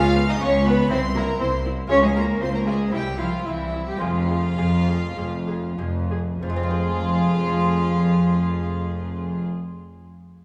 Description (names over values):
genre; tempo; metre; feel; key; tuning
classical, baroque-style concerto movement with solo episodes; 92-122 BPM; 4/4; straight; F minor; A4 = 439 Hz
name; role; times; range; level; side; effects
warm cello; melody; 0.0-9.4 s; E3 to F4; -27 LUFS; equal; none
warm chamber violin section; melody; 0.0-9.4 s; E5 to F6; -37 LUFS; equal; none
warm studio violin section; second line; 0.0-9.4 s; E4 to F5; -29 LUFS; equal; none
lute; accompaniment; 0.0-9.7 s; F2 to C5; -35 LUFS; equal; none
rich chamber double bass section; bass; 0.0-9.4 s; F1 to Db2; -33 LUFS; equal; none
warm chamber cello section; bass; 0.0-9.4 s; C2 to F2; -27 LUFS; equal; none
warm chamber viola section; accompaniment; 0.2-9.4 s; B3 to Ab4; -36 LUFS; equal; none
room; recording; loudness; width
moderate concert hall reverb, RT60 2.2 s; studio reverb; -22 LUFS; mono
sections
0.0-6.4 A section; 6.4-10.4 B section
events
slowing down 0.9-6.4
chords
0.0 Db5; 0.9 C; 1.9 Db; 2.9 C; 4.0 Fm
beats
0.42 0.91 1.41 | 1.91 2.41 2.93 3.46 | 4.01 4.58 5.16 5.78 | 6.42 7.07 7.72 8.38 | 9.03 9.68